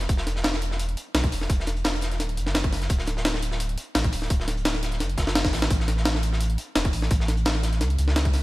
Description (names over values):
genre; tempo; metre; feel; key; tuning
liquid drum and bass; 171 BPM; 4/4; straight; A major; A4 = 439 Hz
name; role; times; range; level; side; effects
warm sub bass; bass; 0.0-8.4 s; D1 to C#2; -25 LUFS; equal; none
breakbeat sampler-style drum kit; drums; 0.0-8.4 s; hi-hat, snare drum; -27 LUFS; equal; none
crunchy breakbeat drum kit; drums; 0.0-8.4 s; hi-hat, snare drum; -33 LUFS; equal; high-pass filter on hats, high-pass filter on snare, high-pass filter on room
electronic kick drum; drums; 0.1-8.3 s; none; -24 LUFS; equal; overdrive
room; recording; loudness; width
light reverb, small room ambience; none; -22 LUFS; side -19 dB against mid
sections
0.0-8.4 A section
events
drum fill 5.4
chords
none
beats
| 0.09 0.44 0.79 1.15 | 1.50 1.85 2.20 2.55 | 2.90 3.25 3.60 3.95 | 4.30 4.65 5.00 5.36 | 5.71 6.06 6.41 6.76 | 7.11 7.46 7.81 8.16